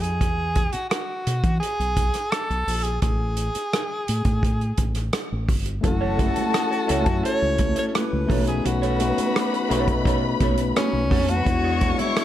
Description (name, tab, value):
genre	lush 1970s-style soul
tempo	85 BPM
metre	4/4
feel	straight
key	unclear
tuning	A4 = 441 Hz
part	breathy tenor saxophone	melody	0.0-12.2 s	C#4 to C#5	-27 LUFS	equal	none
part	fingered electric bass	bass	0.0-12.0 s	F#1 to E3	-25 LUFS	equal	none
part	warm soul drum kit	drums	0.0-12.2 s	hi-hat, kick drum, rim click	-25 LUFS	equal	none
part	warm studio string section	second line	5.8-12.2 s	F#4 to C#6	-29 LUFS	left 2 dB	none
part	overdriven tine electric piano	accompaniment	5.8-12.2 s	G3 to A4	-25 LUFS	left 5 dB	none
part	electric guitar through a small old amp	riff	5.8-12.2 s	D#4 to D#5	-32 LUFS	right 9 dB	spring reverb
part	congas	percussion	5.8-12.2 s	none	-32 LUFS	right 7 dB	none
room	light reverb, small room ambience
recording	dark, warm production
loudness	-20 LUFS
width	side -12 dB against mid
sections	0.0-12.2 A section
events	none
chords	0.2 E; 3.0 N.C.; 5.8 F#m7; 8.3 B9; 11.5 E7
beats	| 0.21 0.92 1.62 2.33 | 3.03 3.73 4.44 5.14 | 5.84 6.54 7.25 7.95 | 8.65 9.36 10.06 10.76 | 11.46 12.16